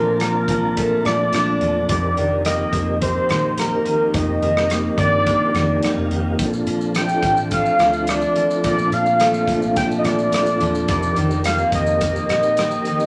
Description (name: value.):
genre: indie pop, bedroom pop.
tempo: 107 BPM.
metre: 4/4.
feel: straight.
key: Bb major.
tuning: A4 = 437 Hz.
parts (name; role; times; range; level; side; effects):
warm velvety synth lead; melody; 0.0-13.1 s; Bb4 to G5; -22 LUFS; equal; chorus.
mellow tonewheel organ; accompaniment; 0.0-13.1 s; C4 to A5; -29 LUFS; equal; chorus vibrato, fast rotary speaker.
picked steel-string acoustic guitar; accompaniment; 0.0-13.1 s; F2 to Eb4; -25 LUFS; equal; warbly pitch drift.
vintage muted picked electric bass; bass; 0.0-12.7 s; E1 to F2; -30 LUFS; equal; none.
loose indie drum kit; drums; 0.2-13.1 s; hi-hat, kick drum, rim click, shaker; -29 LUFS; equal; none.
room: wet large studio reverb, RT60 1.3 s.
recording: none.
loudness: -19 LUFS.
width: mono.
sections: 0.0-13.1 A section.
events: tonewheel organ fill 5.5-6.4.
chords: 0.0 Bbmaj7; 1.9 F7sus4; 6.4 Bbmaj7; 10.9 F7sus4.